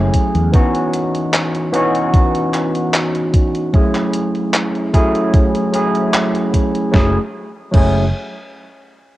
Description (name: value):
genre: vaporwave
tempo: 75 BPM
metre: 4/4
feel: straight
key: F# dorian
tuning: A4 = 435 Hz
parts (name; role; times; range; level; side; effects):
- overdriven tine electric piano; accompaniment; 0.0-8.1 s; E3 to G#4; -16 LUFS; equal; lush chorus, vintage 12-bit sampler grit, cassette tape, analog delay
- mellow fretless electric bass; bass; 0.0-0.5, 6.9-8.1 s; F#1 to E2; -16 LUFS; equal; tube saturation
- detuned 8-bit digital drum machine; drums; 0.1-7.9 s; crash cymbal, handclaps, hi-hat, snare drum; -22 LUFS; equal; vintage 12-bit sampler grit, cassette tape
- electronic kick drum; drums; 0.1-7.9 s; none; -13 LUFS; equal; vintage 12-bit sampler grit, cassette tape
room: light reverb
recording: home recording on cassette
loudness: -13 LUFS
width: side -16 dB against mid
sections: 0.0-6.9 A section; 6.9-9.2 B section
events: none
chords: 0.0 F#m9; 0.5 C#m11; 3.7 F#m9